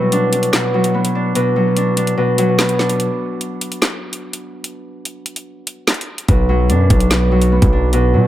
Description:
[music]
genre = hip hop, drill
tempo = 146 BPM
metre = 4/4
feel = half-time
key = B minor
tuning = A4 = 439 Hz
[part]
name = Celtic harp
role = accompaniment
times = 0.0-8.3 s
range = B2 to E4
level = -16 LUFS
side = equal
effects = dub echo
[part]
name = drill drum kit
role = drums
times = 0.1-8.0 s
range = handclaps, hi-hat, kick drum, snare drum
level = -18 LUFS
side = equal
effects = none
[part]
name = distorted 808-style bass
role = bass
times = 6.3-8.3 s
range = B1 to B2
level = -14 LUFS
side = equal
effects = distortion
[sound]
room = light reverb, digital ambience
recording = echo-heavy mix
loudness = -13 LUFS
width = side -13 dB against mid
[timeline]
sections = 0.0-8.3 A section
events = break 0.0-6.3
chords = 0.0 Bm; 3.0 N.C.; 6.3 Bm

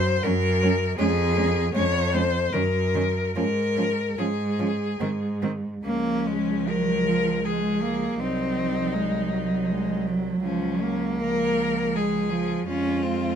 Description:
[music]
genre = classical, lyrical piece for cello ensemble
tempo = 68-84 BPM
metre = 3/4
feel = rubato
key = Db major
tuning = A4 = 440 Hz
[part]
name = rich cello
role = melody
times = 0.0-13.4 s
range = Db4 to Db5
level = -26 LUFS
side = left 4 dB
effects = none
[part]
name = rich cello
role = bass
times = 0.0-13.4 s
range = C2 to Ab2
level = -28 LUFS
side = right 2 dB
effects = none
[part]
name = dark cello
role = second line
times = 0.2-13.4 s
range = F3 to Db4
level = -29 LUFS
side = right 9 dB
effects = none
[part]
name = rich cello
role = accompaniment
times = 0.3-13.4 s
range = Eb3 to Db4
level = -28 LUFS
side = left 1 dB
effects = none
[sound]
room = light reverb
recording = close, detailed microphones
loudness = -22 LUFS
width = side -8 dB against mid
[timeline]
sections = 0.0-5.8 A section; 5.8-13.4 B section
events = none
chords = 0.0 Gb; 1.0 Db/F; 2.5 Ebm/Gb (rootless); 3.4 Db/Ab (rootless); 5.0 Ab5; 5.8 Db; 8.2 Cdim; 10.4 Db; 12.7 Fm

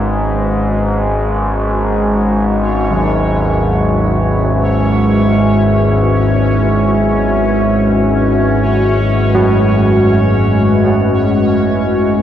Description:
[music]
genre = dark ambient drone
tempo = free time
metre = none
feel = none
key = unclear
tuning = A4 = 440 Hz
[part]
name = deep dark ambient pad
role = sustained chords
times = 0.0-12.2 s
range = G#3 to E5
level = -15 LUFS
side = equal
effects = chorus, built-in reverb
[part]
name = analog drone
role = drone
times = 0.0-12.2 s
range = G#1 to G#2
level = -14 LUFS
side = equal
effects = chorus
[part]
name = bubbling stepped-filter texture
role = texture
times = 0.0-12.2 s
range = C#4 to C#5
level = -20 LUFS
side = left 2 dB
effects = chorus, built-in reverb
[part]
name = carillon bells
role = arpeggios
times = 2.9-12.2 s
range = D#3 to F#3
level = -19 LUFS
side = right 2 dB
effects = diffuse ambient delay
[sound]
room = wet plate reverb, RT60 2.8 s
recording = dreamy mix soaked in reverb, cassette tape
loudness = -11 LUFS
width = side -10 dB against mid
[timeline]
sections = 0.0-12.2 A section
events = none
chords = 0.0 F#5/G#

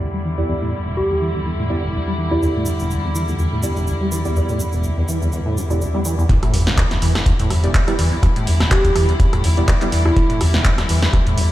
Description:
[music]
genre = acid house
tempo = 124 BPM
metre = 4/4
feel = swing 55% on 16ths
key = E minor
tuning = A4 = 440 Hz
[part]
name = rich chamber string section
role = sustained chords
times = 0.0-11.5 s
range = D3 to E4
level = -27 LUFS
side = left 1 dB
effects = sidechain pumping, low-pass filter
[part]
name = deep acid bass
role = riff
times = 0.0-11.4 s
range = E1 to G3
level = -22 LUFS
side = equal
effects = tube saturation, lush chorus, sidechain pumping, dub echo
[part]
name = warm sub bass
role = bass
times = 0.0-11.5 s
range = E2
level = -20 LUFS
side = equal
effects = sidechain pumping
[part]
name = deep mellow chord stab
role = stabs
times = 0.4-9.9 s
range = B3 to D5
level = -28 LUFS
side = right 1 dB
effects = chorus, dub echo
[part]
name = soft struck synth lead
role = melody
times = 1.0-2.7, 8.7-10.4 s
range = E4 to G4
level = -23 LUFS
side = equal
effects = chorus, digital delay
[part]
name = egg shaker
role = percussion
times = 2.4-6.3 s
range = none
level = -33 LUFS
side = right 2 dB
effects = none
[part]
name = electro analog drum machine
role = drums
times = 6.3-11.5 s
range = handclaps, hi-hat, rim click, snare drum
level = -23 LUFS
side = equal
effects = low-pass filter on snare, low-pass filter on hats, low-pass filter on cymbals
[part]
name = electronic kick drum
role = drums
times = 6.3-11.2 s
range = none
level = -17 LUFS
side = equal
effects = overdrive
[part]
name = impact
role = sound effects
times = 6.3-8.2 s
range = none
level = -26 LUFS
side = equal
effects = none
[sound]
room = light reverb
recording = played on a big sound system in a bare room, stone room reverb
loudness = -16 LUFS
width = side -15 dB against mid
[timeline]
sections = 0.0-6.3 A section; 6.3-11.5 B section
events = drop 6.3-11.5; impact 6.3-8.2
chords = 0.0 Em7

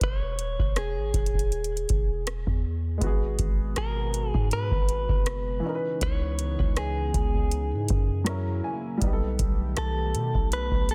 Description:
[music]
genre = contemporary R&B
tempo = 80 BPM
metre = 4/4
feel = swing 54% on 16ths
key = G# minor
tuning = A4 = 440 Hz
[part]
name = direct-recorded clean electric guitar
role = melody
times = 0.0-10.9 s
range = G#4 to C#5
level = -34 LUFS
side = equal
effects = spring reverb, digital delay
[part]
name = warm 808-style bass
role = bass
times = 0.0-10.9 s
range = D#1 to B2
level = -31 LUFS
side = equal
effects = none
[part]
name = booming analog drum machine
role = drums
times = 0.0-10.9 s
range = hi-hat, kick drum, rim click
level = -28 LUFS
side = equal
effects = soft clipping on snare
[part]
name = dark baby grand piano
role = accompaniment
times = 3.0-10.9 s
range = E3 to G#5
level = -35 LUFS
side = equal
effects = none
[part]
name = warm analog pad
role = sustained chords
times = 3.0-10.9 s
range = B2 to G4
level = -39 LUFS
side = equal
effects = chorus, sidechain pumping
[sound]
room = little or no reverb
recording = dense, heavily limited modern master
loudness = -27 LUFS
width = mono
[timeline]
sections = 0.0-10.9 A section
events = grand piano fill 7.9-9.0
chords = 0.0 Emaj7; 3.0 G#m9; 5.6 C#m9; 8.3 F#7; 9.0 Baug7

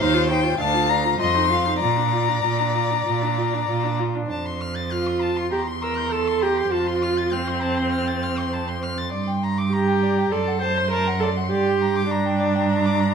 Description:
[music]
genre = quick classical-period movement for string quartet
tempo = 100 BPM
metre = 4/4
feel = straight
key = Bb major, F major from 4.3 s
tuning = A4 = 441 Hz
[part]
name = clear violin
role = melody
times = 0.0-13.1 s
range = F5 to C6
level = -26 LUFS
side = left 9 dB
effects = none
[part]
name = rich violin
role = second line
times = 0.0-13.1 s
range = C5 to A6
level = -29 LUFS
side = left 4 dB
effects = none
[part]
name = clear viola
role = accompaniment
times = 0.0-13.1 s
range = C4 to C5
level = -24 LUFS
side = right 2 dB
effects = none
[part]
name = clear cello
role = bass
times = 0.0-13.1 s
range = D2 to Bb2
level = -24 LUFS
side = right 5 dB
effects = none
[sound]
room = moderate recital hall reverb, RT60 1.3 s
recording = none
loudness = -20 LUFS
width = side -6 dB against mid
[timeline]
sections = 0.0-4.3 A section; 4.3-13.1 B section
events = none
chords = 0.0 F5/Eb; 0.6 Bb/D; 1.2 F5; 1.8 Bb; 4.3 F; 5.5 C7/E; 6.7 F; 9.1 Gm; 10.3 D7/F#; 11.5 Gm

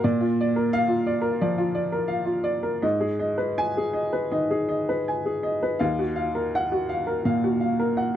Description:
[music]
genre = neoclassical minimalist piano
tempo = 79-88 BPM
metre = 4/4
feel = rubato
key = unclear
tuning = A4 = 441 Hz
[part]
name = clear upright piano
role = solo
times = 0.0-8.2 s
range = Eb2 to Ab5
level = -22 LUFS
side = equal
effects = none
[sound]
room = light reverb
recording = dry, close 1970s-style studio recording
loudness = -22 LUFS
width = side -10 dB against mid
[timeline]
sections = 0.0-8.2 A section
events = none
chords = 0.0 Bb; 2.8 Abm; 5.8 Ebmadd9

